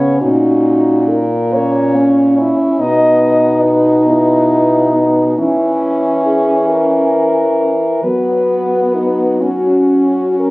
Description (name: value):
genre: classical, lyrical piece for horn quartet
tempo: 41-48 BPM (dotted quarters)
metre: 12/8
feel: rubato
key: B major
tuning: A4 = 440 Hz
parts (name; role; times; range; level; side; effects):
- mellow French horn; melody; 0.0-10.5 s; D#4 to D#5; -16 LUFS; left 1 dB; none
- warm French horn; second line; 0.0-10.5 s; B3 to D#4; -17 LUFS; right 1 dB; none
- warm French horn; accompaniment; 0.0-10.5 s; A#3 to E4; -16 LUFS; equal; none
- warm French horn; bass; 0.0-10.5 s; A#2 to F#3; -16 LUFS; equal; none
room: moderate stone room reverb, RT60 1.1 s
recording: recorded on a phone in the room, club reverb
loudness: -10 LUFS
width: side -21 dB against mid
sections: 0.0-10.5 A section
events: none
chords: 0.2 F#/A#; 2.8 B; 5.4 A#dim/E; 8.0 B5/F#; 9.4 F#5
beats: | 0.21 1.52 2.79 4.08 | 5.38 6.69 8.03 9.42